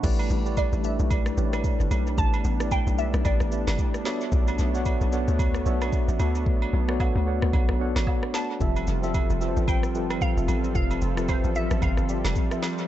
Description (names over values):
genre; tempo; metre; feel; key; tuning
amapiano; 112 BPM; 4/4; swing 58% on 16ths; unclear; A4 = 438 Hz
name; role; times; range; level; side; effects
mellow tine electric piano; accompaniment; 0.0-12.9 s; F3 to C#6; -30 LUFS; left 1 dB; medium stereo tremolo, dub echo
lush unison pad; sustained chords; 0.0-12.9 s; F3 to A4; -33 LUFS; equal; chorus, sidechain pumping
hollow log drum bass; bass; 0.0-12.4 s; F1 to D2; -26 LUFS; equal; none
afro-pop drum kit; drums; 0.0-12.9 s; crash cymbal, kick drum, rim click, shaker, snare drum; -27 LUFS; equal; vintage 12-bit sampler grit
agogo bells and woodblock; percussion; 0.2-12.8 s; none; -38 LUFS; right 6 dB; dub echo
glassy wavetable pluck; melody; 0.6-4.0, 8.3-12.3 s; C5 to A5; -34 LUFS; right 1 dB; chorus, phaser, dub echo
deep mellow chord stab; stabs; 8.6-12.6 s; F4 to F5; -36 LUFS; right 4 dB; chorus, dub echo
room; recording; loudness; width
digital ambience; echo-heavy mix, nothing above 8.0 kHz; -22 LUFS; side -12 dB against mid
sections
0.0-12.9 A section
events
drop 0.0-12.9; hi-hats muted 6.5-8.6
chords
0.0 A9sus4; 4.1 Bm11; 8.6 Fmaj7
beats
| 0.04 0.57 1.11 1.64 | 2.18 2.71 3.25 3.79 | 4.32 4.86 5.39 5.93 | 6.46 7.00 7.54 8.07 | 8.61 9.14 9.68 10.21 | 10.75 11.29 11.82 12.36